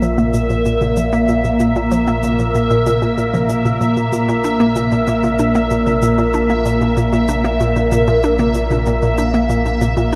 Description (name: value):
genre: ambient, sequencer-driven space music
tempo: 95 BPM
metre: 4/4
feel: straight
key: unclear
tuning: A4 = 440 Hz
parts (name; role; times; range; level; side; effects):
- phased analog pad; sustained chords; 0.0-10.2 s; Bb2 to E5; -18 LUFS; equal; phaser, chorus, shimmer reverb
- hollow square pluck; riff; 0.0-10.2 s; Bb2 to D4; -22 LUFS; equal; chorus, tape echo, shimmer reverb
- warm sub bass; bass; 0.0-10.2 s; Bb1; -26 LUFS; equal; tube saturation
- electronic cabasa and toms; percussion; 0.0-10.2 s; none; -32 LUFS; equal; tape echo
- bubbling stepped-filter texture; texture; 0.0-10.2 s; E5; -28 LUFS; equal; chorus, built-in reverb, shimmer reverb
room: wet huge ambient reverb, RT60 6.9 s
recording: none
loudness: -16 LUFS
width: mono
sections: 0.0-10.2 A section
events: none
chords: none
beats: 0.02 0.65 | 1.29 1.92 2.55 3.18 | 3.81 4.44 5.08 5.71 | 6.34 6.97 7.60 8.23 | 8.87 9.50 10.13